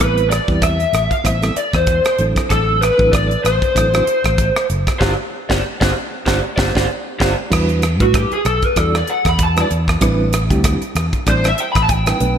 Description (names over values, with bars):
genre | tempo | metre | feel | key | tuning
electric jazz fusion | 96 BPM | 4/4 | swing 56% on 16ths | A dorian from 7.5 s | A4 = 438 Hz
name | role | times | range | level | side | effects
lead guitar through a small cranked amp | melody | 0.0-12.4 s | F#4 to B5 | -18 LUFS | equal | overdrive, lush chorus
mellow reed electric piano | accompaniment | 0.0-12.4 s | F#3 to D5 | -24 LUFS | right 3 dB | fast tremolo
fingered electric bass | bass | 0.0-12.4 s | F#1 to A2 | -19 LUFS | equal | none
crisp fusion drum kit | drums | 0.0-12.4 s | crash cymbal, hi-hat, kick drum, rim click, snare drum | -19 LUFS | equal | gated reverb
room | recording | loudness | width
light reverb | bright 1980s-style digital production | -14 LUFS | side -8 dB against mid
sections
0.0-7.5 A section; 7.5-12.4 B section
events
band accent 5.0-7.5; lead electric guitar solo 7.5-12.4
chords
0.0 Am9; 2.2 D9/A; 5.0 G7sus4; 7.5 Em7; 10.0 Am11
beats
0.62 1.25 1.87 | 2.50 3.13 3.75 4.38 | 5.01 5.64 6.26 6.89 | 7.52 8.14 8.77 9.39 | 10.02 10.65 11.27 11.90